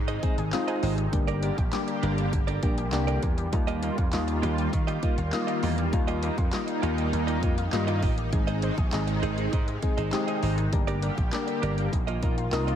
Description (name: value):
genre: dance-pop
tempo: 100 BPM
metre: 4/4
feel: straight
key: Eb major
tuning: A4 = 442 Hz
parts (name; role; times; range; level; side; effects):
- supersaw pad; sustained chords; 0.0-12.8 s; C3 to G4; -32 LUFS; equal; ensemble chorus, sidechain pumping
- vintage slap bass; bass; 0.0-12.8 s; G1 to Eb3; -28 LUFS; equal; sidechain pumping
- analog pluck; arpeggios; 0.1-12.8 s; D3 to Eb5; -39 LUFS; left 3 dB; chorus, sidechain pumping, tape echo
- direct-recorded clean electric guitar; riff; 0.1-12.8 s; Bb3 to Eb5; -36 LUFS; right 9 dB; wide subtle chorus
- pop drum kit; drums; 0.1-12.8 s; handclaps, hi-hat, kick drum, snare drum; -29 LUFS; equal; none
- soft electric-piano-like synth keys; accompaniment; 0.2-12.8 s; G3 to Bb4; -32 LUFS; left 3 dB; chorus, sidechain pumping
room: light reverb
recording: none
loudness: -24 LUFS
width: side -9 dB against mid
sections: 0.0-12.8 A section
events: none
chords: 0.0 Ab; 1.1 Gm; 3.5 Ebadd9; 8.3 Ab; 10.7 Gm; 11.9 Bbsus4